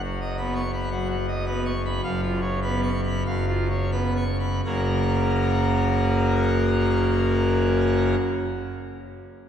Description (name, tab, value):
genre	classical, organ toccata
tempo	81-112 BPM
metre	4/4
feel	straight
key	F# major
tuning	A4 = 439 Hz
part	pipe organ, full organ	solo	0.0-8.2 s	F#1 to C#6	-21 LUFS	equal	none
room	wet church reverb, RT60 3.5 s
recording	heard from further back in the room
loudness	-21 LUFS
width	side -8 dB against mid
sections	0.0-4.6 A section; 4.6-9.5 B section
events	slowing down 0.0-4.6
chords	0.0 B/F#; 2.0 C#7/F#; 4.6 F#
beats	0.38 0.92 1.47 | 2.04 2.63 3.25 3.92 | 4.64 5.38 6.12 6.85 | 7.58